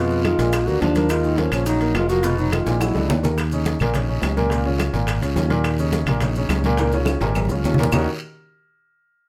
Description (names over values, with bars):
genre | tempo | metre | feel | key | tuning
Afro-Cuban jazz | 211 BPM | 4/4 | straight | Eb minor | A4 = 442 Hz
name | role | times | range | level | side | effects
mellow duduk | melody | 0.0-3.2 s | Db4 to Gb4 | -25 LUFS | equal | none
growling tenor saxophone | second line | 0.0-3.2 s | F3 to Bb3 | -31 LUFS | equal | none
warm grand piano | accompaniment | 0.0-8.1 s | Bb2 to Bb4 | -26 LUFS | equal | none
modern bright fingered electric bass | bass | 0.0-8.1 s | F1 to F2 | -24 LUFS | equal | none
congas | percussion | 0.1-8.0 s | none | -28 LUFS | equal | none
maracas | percussion | 0.1-8.0 s | none | -42 LUFS | equal | none
bongos | percussion | 0.2-8.0 s | none | -34 LUFS | equal | none
claves | percussion | 0.2-8.0 s | none | -33 LUFS | equal | none
guiro | percussion | 0.2-8.0 s | none | -41 LUFS | equal | none
timbales | percussion | 0.2-8.0 s | none | -32 LUFS | equal | none
room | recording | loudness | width
light reverb | none | -20 LUFS | mono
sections
0.0-3.4 A section; 3.4-7.9 B section; 7.9-9.1 C section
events
drum fill 2.7-3.4, 6.8-7.9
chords
0.0 Fm7b5; 0.5 Bb; 1.1 Ebm11; 2.2 Fm7b5; 2.8 Bb7alt; 3.4 Eb5; 4.5 Db69; 5.7 Eb5; 6.8 Db69; 7.9 Ebm7